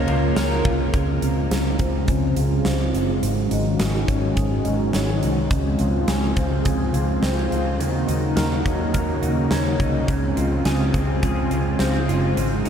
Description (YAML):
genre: dream pop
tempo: 105 BPM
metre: 4/4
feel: straight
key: Db major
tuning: A4 = 440 Hz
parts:
  - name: string machine, cellos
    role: sustained chords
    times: 0.0-12.7 s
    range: Db3 to Gb4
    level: -23 LUFS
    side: equal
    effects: ensemble chorus, low-pass filter
  - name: electric guitar through a small old amp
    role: arpeggios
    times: 0.0-12.7 s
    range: Ab2 to Bb4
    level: -26 LUFS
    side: equal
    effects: analog chorus, low-pass filter, analog delay
  - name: vintage muted fingered electric bass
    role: bass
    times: 0.0-12.7 s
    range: Gb1 to Eb2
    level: -24 LUFS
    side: equal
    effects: none
  - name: vibraphone with medium hard mallets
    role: texture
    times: 0.0-1.2, 10.7-12.6 s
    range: Eb4 to Bb4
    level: -37 LUFS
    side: right 3 dB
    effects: none
  - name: huge arena drum kit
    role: drums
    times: 0.1-12.7 s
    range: hi-hat, kick drum, ride cymbal, snare drum, tambourine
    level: -26 LUFS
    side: equal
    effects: none
room: moderate huge ambient reverb, RT60 8.1 s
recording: dreamy mix soaked in reverb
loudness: -19 LUFS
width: side -8 dB against mid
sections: 0.9-12.7 A section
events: filter sweep 0.9-12.7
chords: 0.0 Bbmadd9; 0.9 Dbmaj7; 3.2 Ab7sus4; 5.5 Dbmaj7; 7.8 Ebm7; 10.1 Dbmaj7